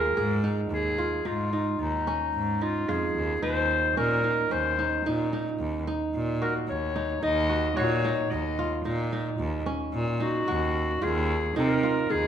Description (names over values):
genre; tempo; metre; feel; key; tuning
contemporary instrumental, contemporary; 111 BPM; 7/4; straight; Eb dorian; A4 = 440 Hz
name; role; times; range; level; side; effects
clear clarinet; melody; 0.0-12.3 s; Eb4 to Eb5; -28 LUFS; left 2 dB; none
kora; arpeggios; 0.0-12.3 s; Db4 to Ab4; -30 LUFS; right 2 dB; none
bright cello; bass; 0.0-12.3 s; Eb2 to C3; -29 LUFS; equal; none
room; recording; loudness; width
moderate recital hall reverb, RT60 1.4 s; minimal, uncompressed stereo recording; -24 LUFS; side -9 dB against mid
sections
0.0-12.3 A section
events
none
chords
0.0 Db/Eb; 3.4 Ebmadd9; 11.0 Fm/Eb